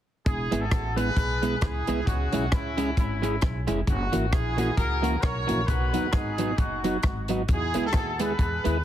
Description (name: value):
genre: ska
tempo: 133 BPM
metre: 4/4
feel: swing 57% on 8ths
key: E major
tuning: A4 = 440 Hz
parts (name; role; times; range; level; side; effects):
- warm horn section; melody; 0.3-8.8 s; C#4 to C#5; -30 LUFS; equal; analog delay, plate reverb
- upright bass; bass; 0.3-8.8 s; E1 to E2; -30 LUFS; equal; none
- compact cocktail drum kit; drums; 0.3-8.7 s; hi-hat, kick drum, rim click; -27 LUFS; equal; none
- electric guitar at the edge of break-up; accompaniment; 0.5-8.8 s; E3 to G#4; -32 LUFS; right 6 dB; lush chorus, analog delay
- mellow tonewheel organ; stabs; 0.5-8.8 s; A#3 to G#4; -32 LUFS; left 3 dB; overdrive, chorus vibrato, slow rotary speaker, plate reverb
room: light reverb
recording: heavily compressed radio sound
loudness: -23 LUFS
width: side -11 dB against mid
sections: 0.3-8.8 A section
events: none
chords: 0.3 E; 2.1 C#m; 3.9 F#7; 5.7 B; 7.5 E